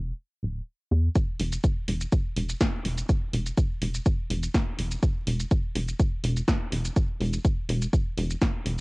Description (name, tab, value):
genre	minimal techno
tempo	124 BPM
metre	4/4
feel	straight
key	unclear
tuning	A4 = 441 Hz
part	rubbery square bass	bass	0.0-8.8 s	D1 to E2	-26 LUFS	equal	sidechain pumping
part	electronic kick drum	drums	1.2-8.5 s	none	-24 LUFS	equal	cassette tape
part	punchy analog drum machine	drums	1.2-8.8 s	hi-hat, shaker, snare drum	-32 LUFS	equal	cassette tape
room	little or no reverb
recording	home recording on cassette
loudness	-24 LUFS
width	side -27 dB against mid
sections	0.0-1.2 A section; 1.2-8.8 B section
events	drop 1.2-8.8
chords	none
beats	0.19 0.67 | 1.16 1.64 2.12 2.61 | 3.09 3.58 4.06 4.54 | 5.03 5.51 6.00 6.48 | 6.96 7.45 7.93 8.41